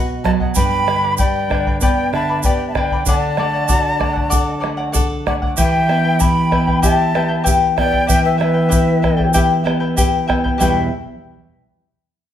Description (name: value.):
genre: andean folk, Andean ensemble.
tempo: 96 BPM.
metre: 4/4.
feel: straight.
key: E minor.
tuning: A4 = 440 Hz.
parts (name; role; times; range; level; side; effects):
charango; accompaniment; 0.0-10.9 s; E4 to B5; -21 LUFS; left 3 dB; none.
nylon-string guitar; accompaniment; 0.0-10.9 s; E2 to E5; -19 LUFS; right 1 dB; none.
bright large quena; melody; 0.2-9.3 s; E5 to B5; -20 LUFS; right 2 dB; none.
mellow polished pan flute; second line; 0.2-9.3 s; B4 to G5; -24 LUFS; left 4 dB; none.
bombo; percussion; 0.3-10.9 s; none; -20 LUFS; left 1 dB; none.
egg shaker; percussion; 0.5-10.9 s; none; -26 LUFS; right 6 dB; none.
room: moderate large studio reverb, RT60 1.1 s.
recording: band playing live in one room.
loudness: -14 LUFS.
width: side -10 dB against mid.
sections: 0.0-10.6 A section; 10.6-12.3 B section.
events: none.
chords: 0.0 B; 0.6 G; 3.1 D; 5.6 Em.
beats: | 0.55 1.18 1.81 2.43 | 3.06 3.69 4.32 4.95 | 5.57 6.20 6.83 7.46 | 8.09 8.71 9.34 9.97 | 10.60.